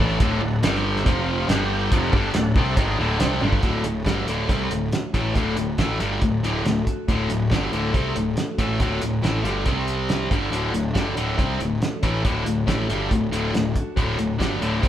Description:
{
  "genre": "classic rock",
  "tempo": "139 BPM",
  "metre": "4/4",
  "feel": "straight",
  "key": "D mixolydian",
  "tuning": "A4 = 440 Hz",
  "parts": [
    { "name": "tonewheel organ", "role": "sustained chords", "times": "0.0-3.6 s", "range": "C4 to G5", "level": "-32 LUFS", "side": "right 1 dB", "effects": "slow rotary speaker, overdrive, chorus vibrato" },
    { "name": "distorted electric guitar", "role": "riff", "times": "0.0-14.9 s", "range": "D2 to C4", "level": "-24 LUFS", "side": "left 1 dB", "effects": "overdrive" },
    { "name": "fuzz picked electric bass", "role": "bass", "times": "0.0-14.9 s", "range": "D1 to C2", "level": "-26 LUFS", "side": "equal", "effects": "overdrive" },
    { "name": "cloth-damped thuddy drum kit", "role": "drums", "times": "0.2-14.9 s", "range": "hi-hat, kick drum, snare drum, toms", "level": "-24 LUFS", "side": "equal", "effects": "none" },
    { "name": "picked steel-string acoustic guitar", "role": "accompaniment", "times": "3.6-14.9 s", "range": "C3 to A4", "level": "-34 LUFS", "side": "right 1 dB", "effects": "none" }
  ],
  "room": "light reverb",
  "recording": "band playing live in one room",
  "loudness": "-20 LUFS",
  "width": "side -11 dB against mid",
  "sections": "0.0-3.6 A section; 3.6-14.9 B section",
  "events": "drum fill 3.4",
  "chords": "0.0 D; 0.6 G5; 1.1 F5; 1.5 G5; 1.9 D; 9.7 C5; 10.3 D"
}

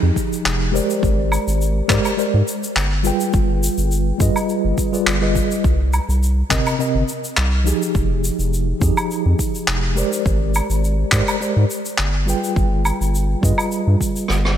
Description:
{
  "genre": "sunset chillout",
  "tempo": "104 BPM",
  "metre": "4/4",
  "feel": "swing 53% on 16ths",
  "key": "unclear",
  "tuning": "A4 = 440 Hz",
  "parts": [
    { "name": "mellow tine electric piano", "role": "accompaniment", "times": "0.0-14.6 s", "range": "C3 to G5", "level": "-21 LUFS", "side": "moving between left 3 dB and right 3 dB", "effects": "medium stereo tremolo, auto-pan, digital delay" },
    { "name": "round analog bass", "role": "bass", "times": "0.0-14.6 s", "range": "F1 to Ab2", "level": "-18 LUFS", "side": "equal", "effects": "none" },
    { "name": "electronic kick drum", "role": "drums", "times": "0.2-14.1 s", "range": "none", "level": "-21 LUFS", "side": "equal", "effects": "none" },
    { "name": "shaker, handclaps, woodblock and rim click", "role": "drums", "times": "0.2-14.6 s", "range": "none", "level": "-23 LUFS", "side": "equal", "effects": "none" }
  ],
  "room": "light reverb, small room ambience",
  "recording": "bright 1980s-style digital production",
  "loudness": "-16 LUFS",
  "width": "side -10 dB against mid",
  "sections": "0.0-14.6 A section",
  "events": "drum fill 14.3",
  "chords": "0.0 Fm9; 1.0 Abmaj9#11; 3.0 G7b9b13; 5.6 Cm7; 8.0 Fm9; 10.3 Abmaj9#11; 12.3 G7b9b13"
}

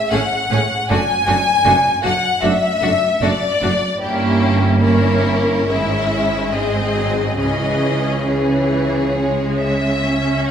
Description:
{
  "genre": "classical, slow romantic movement for string orchestra",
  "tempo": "67-80 BPM",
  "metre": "4/4",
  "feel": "rubato",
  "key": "C# minor",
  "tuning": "A4 = 438 Hz",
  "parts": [
    { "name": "rich studio violin section", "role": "second line", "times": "0.0-10.5 s", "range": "G4 to G#5", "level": "-19 LUFS", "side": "left 2 dB", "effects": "none" },
    { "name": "clear studio violin section", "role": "melody", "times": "0.1-10.5 s", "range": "E4 to F#5", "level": "-24 LUFS", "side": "left 4 dB", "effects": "none" },
    { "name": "clear studio viola section", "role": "accompaniment", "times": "0.1-10.5 s", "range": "E3 to D4", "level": "-22 LUFS", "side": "right 1 dB", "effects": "none" },
    { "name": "rich chamber cello section", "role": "bass", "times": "0.1-10.5 s", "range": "F#2 to C#3", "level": "-22 LUFS", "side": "right 2 dB", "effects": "none" },
    { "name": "rich studio double bass section", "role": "bass", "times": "0.1-10.5 s", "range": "F#1 to C#2", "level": "-23 LUFS", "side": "right 2 dB", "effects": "none" }
  ],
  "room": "wet recital hall reverb, RT60 1.7 s",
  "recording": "recorded in a church or concert hall",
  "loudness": "-15 LUFS",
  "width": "side -8 dB against mid",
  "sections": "0.0-10.5 A section",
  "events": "none",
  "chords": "0.0 A; 0.9 D/F#; 4.0 Gdim7; 5.7 C#m/G#; 6.5 G#; 7.4 C#m"
}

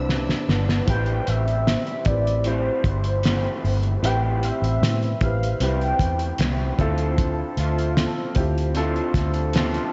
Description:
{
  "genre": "indie pop, bedroom pop",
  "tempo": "76 BPM",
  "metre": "4/4",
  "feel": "straight",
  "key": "unclear",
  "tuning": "A4 = 439 Hz",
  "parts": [
    { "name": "warm velvety synth lead", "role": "melody", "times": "0.0-6.8 s", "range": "C5 to G5", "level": "-31 LUFS", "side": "equal", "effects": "lush chorus, diffuse ambient delay" },
    { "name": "dark upright piano", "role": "accompaniment", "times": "0.0-9.9 s", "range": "C4 to C5", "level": "-32 LUFS", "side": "equal", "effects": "cassette tape" },
    { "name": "electric guitar through a small old amp", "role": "accompaniment", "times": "0.0-9.9 s", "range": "A2 to A4", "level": "-32 LUFS", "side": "equal", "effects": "analog chorus, vibrato effect" },
    { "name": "warm symphonic string section", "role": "sustained chords", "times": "0.0-0.9 s", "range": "D5 to E6", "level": "-44 LUFS", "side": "equal", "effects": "none" },
    { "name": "vintage muted fingered electric bass", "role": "bass", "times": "0.0-9.8 s", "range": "G1 to A2", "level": "-26 LUFS", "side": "equal", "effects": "none" },
    { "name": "cloth-damped thuddy drum kit", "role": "drums", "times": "0.1-9.9 s", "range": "hi-hat, kick drum, snare drum", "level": "-27 LUFS", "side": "equal", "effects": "none" }
  ],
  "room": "moderate lush hall reverb, RT60 2.6 s",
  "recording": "dreamy mix soaked in reverb, cassette tape, nothing above 7.9 kHz",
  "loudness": "-22 LUFS",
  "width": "mono",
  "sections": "0.9-9.9 A section",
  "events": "drum fill 0.1-0.9",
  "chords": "0.0 Cmaj9; 0.9 Am7; 6.8 Dm7"
}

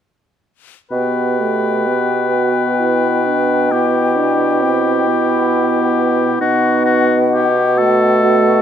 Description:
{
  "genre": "classical, slow romantic movement for wind quintet",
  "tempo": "44 BPM (dotted quarters)",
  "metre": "12/8",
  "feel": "rubato",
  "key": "E minor",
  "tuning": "A4 = 442 Hz",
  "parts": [
    { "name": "mellow hollow silver concert flute", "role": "melody", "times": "0.9-8.6 s", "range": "F#5 to G5", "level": "-22 LUFS", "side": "left 9 dB", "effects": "none" },
    { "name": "warm oboe", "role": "second line", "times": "0.9-8.6 s", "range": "F#4 to B4", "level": "-20 LUFS", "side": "left 5 dB", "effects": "none" },
    { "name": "mellow clarinet", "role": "accompaniment", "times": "0.9-8.6 s", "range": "D4 to G4", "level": "-20 LUFS", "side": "right 8 dB", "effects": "none" },
    { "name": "warm French horn", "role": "accompaniment", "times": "0.9-8.6 s", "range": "A3 to D4", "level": "-20 LUFS", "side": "left 1 dB", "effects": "none" },
    { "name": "warm bassoon", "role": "bass", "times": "0.9-8.6 s", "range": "B2", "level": "-17 LUFS", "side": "right 2 dB", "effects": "none" }
  ],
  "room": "light reverb",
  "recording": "close, detailed microphones",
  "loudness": "-13 LUFS",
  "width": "side -9 dB against mid",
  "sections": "0.9-8.6 A section",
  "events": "none",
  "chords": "0.9 Em/B; 6.4 B7"
}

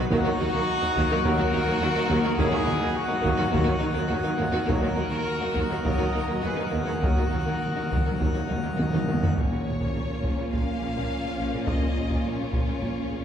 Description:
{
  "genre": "cinematic, epic orchestral film score",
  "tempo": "104 BPM",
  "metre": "4/4",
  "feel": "straight",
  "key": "Bb minor from 9.4 s",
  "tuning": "A4 = 440 Hz",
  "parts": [
    { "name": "rich symphonic violin section", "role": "second line", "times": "0.0-13.2 s", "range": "A#3 to F#4", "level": "-33 LUFS", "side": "left 1 dB", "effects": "none" },
    { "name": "clear symphonic viola section", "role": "accompaniment", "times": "0.0-13.2 s", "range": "Db3 to Bb3", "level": "-32 LUFS", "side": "right 1 dB", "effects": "none" },
    { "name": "pipe organ, plenum", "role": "sustained chords", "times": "0.0-9.3 s", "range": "B3 to F#5", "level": "-34 LUFS", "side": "equal", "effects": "none" },
    { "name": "rich symphonic cello section", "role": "bass", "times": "0.0-13.2 s", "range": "D#2 to Bb2", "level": "-34 LUFS", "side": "right 1 dB", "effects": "none" },
    { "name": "rich studio violin section", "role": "melody", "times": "0.1-13.2 s", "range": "D#4 to F5", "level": "-35 LUFS", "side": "left 3 dB", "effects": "none" },
    { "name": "clear trombone section", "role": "sustained chords", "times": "0.1-13.2 s", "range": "Bb2 to F#3", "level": "-39 LUFS", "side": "right 2 dB", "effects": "none" },
    { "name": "mellow French horn section", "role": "sustained chords", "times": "0.1-13.2 s", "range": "A#3 to F#4", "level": "-36 LUFS", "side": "equal", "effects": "none" },
    { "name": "dark trumpet section", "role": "stabs", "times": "0.1-8.8 s", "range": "F#4 to D#5", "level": "-30 LUFS", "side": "left 1 dB", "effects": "none" },
    { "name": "mellow tuba", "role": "bass", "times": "0.1-9.1 s", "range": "D#2", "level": "-32 LUFS", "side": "right 1 dB", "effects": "none" },
    { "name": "rich symphonic double bass section", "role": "bass", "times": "0.1-13.2 s", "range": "Bb1 to D#2", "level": "-35 LUFS", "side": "right 1 dB", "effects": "none" },
    { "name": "taiko ensemble", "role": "drums", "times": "0.1-13.2 s", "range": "none", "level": "-29 LUFS", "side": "equal", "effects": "none" },
    { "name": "timpani", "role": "percussion", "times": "4.7-9.3 s", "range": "D#3", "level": "-32 LUFS", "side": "right 1 dB", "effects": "none" }
  ],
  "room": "wet scoring stage reverb, RT60 1.9 s",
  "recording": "heard from further back in the room",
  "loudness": "-23 LUFS",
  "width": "side -8 dB against mid",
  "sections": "0.0-9.4 A section; 9.4-13.2 B section",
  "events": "timpani fill 4.7-9.4; drum fill 8.8-9.4",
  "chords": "0.1 D#m; 9.4 Bbm"
}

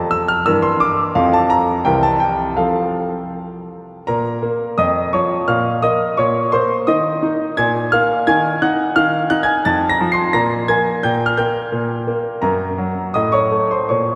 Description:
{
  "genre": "classical-period piano sonatina",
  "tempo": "86 BPM",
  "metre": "2/4",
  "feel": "rubato",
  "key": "F major, Bb minor from 4.1 s",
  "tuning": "A4 = 440 Hz",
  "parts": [
    { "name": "bright concert grand piano", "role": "solo", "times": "0.0-14.2 s", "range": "C2 to C7", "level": "-17 LUFS", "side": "equal", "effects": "none" }
  ],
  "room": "wet church reverb, RT60 3.8 s",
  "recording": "none",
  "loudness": "-17 LUFS",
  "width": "mono",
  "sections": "0.0-4.1 A section; 4.1-14.2 B section",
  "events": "none",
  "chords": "0.5 Edim/G; 1.1 F; 1.9 C7; 2.6 F; 4.1 N.C.; 4.8 Dbadd9/F; 5.5 Bbm; 6.9 N.C.; 7.6 Bb5; 8.3 Ebm; 9.7 F; 10.3 Absus2/Bb; 11.0 Gm/Bb; 12.4 Gb; 13.2 Adim"
}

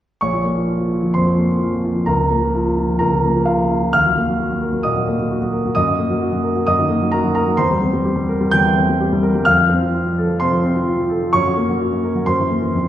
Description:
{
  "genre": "classical, virtuoso piano study",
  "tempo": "130 BPM",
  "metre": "4/4",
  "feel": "rubato",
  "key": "Bb minor",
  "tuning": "A4 = 440 Hz",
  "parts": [
    { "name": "warm grand piano", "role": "solo", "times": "0.2-12.9 s", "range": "Bb1 to G6", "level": "-15 LUFS", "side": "equal", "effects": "none" }
  ],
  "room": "wet recital hall reverb, RT60 1.5 s",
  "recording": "recorded in a church or concert hall, lossy compression artefacts",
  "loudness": "-15 LUFS",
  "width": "side -11 dB against mid",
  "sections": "0.2-12.9 A section",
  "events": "none",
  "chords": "0.2 Bbm; 2.1 Bbm/Db; 3.9 Ebm; 5.8 Ebm/Gb; 7.6 C7/E; 9.5 F; 11.3 Gb; 12.3 Gb7"
}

